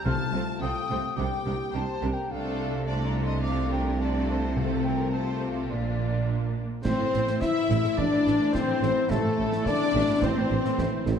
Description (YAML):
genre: cinematic, heroic adventure film score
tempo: 106 BPM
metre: 4/4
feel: straight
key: unclear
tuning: A4 = 440 Hz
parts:
  - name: warm symphonic violin section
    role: melody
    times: 0.0-11.1 s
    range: F4 to A5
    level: -36 LUFS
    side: left 3 dB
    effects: none
  - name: silver concert flute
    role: second line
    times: 0.0-11.1 s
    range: D5 to F6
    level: -36 LUFS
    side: left 1 dB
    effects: none
  - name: warm French horn section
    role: sustained chords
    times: 0.0-11.1 s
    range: A3 to G4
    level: -30 LUFS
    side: left 5 dB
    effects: none
  - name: clear symphonic violin section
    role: second line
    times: 0.1-11.1 s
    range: F4 to E5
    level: -38 LUFS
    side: left 3 dB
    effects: none
  - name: clear symphonic viola section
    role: accompaniment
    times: 0.1-11.1 s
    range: G3 to E4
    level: -35 LUFS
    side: equal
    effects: none
  - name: rich symphonic cello section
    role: bass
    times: 0.1-11.1 s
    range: A2 to C3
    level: -31 LUFS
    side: right 2 dB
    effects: none
  - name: rich symphonic double bass section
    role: bass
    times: 0.1-11.1 s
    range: A1 to C2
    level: -31 LUFS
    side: right 3 dB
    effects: none
  - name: timpani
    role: percussion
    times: 0.1-0.9, 4.6-5.4 s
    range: C3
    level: -32 LUFS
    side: left 4 dB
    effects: none
  - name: clear clarinet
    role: second line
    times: 6.8-11.1 s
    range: A4 to E5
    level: -35 LUFS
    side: left 2 dB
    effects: none
  - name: clear oboe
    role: second line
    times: 6.8-11.1 s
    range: A4 to E5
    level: -38 LUFS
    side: right 1 dB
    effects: none
  - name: mellow tuba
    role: bass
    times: 6.8-11.1 s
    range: A1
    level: -33 LUFS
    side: right 4 dB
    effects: none
  - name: concert snare drum, clash cymbals and concert bass drum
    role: drums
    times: 6.8-11.2 s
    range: none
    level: -35 LUFS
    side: equal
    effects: none
  - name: bright trombone section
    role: sustained chords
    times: 6.9-11.2 s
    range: E3 to E4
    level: -35 LUFS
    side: right 5 dB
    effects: none
room: wet scoring stage reverb, RT60 2.0 s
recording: dark, warm production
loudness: -24 LUFS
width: side -7 dB against mid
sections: 0.0-6.8 A section; 6.8-11.2 B section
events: none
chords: 0.1 F/C; 1.2 Gm/C; 2.3 Dm/C; 4.6 F/C; 5.7 Bb; 6.8 Am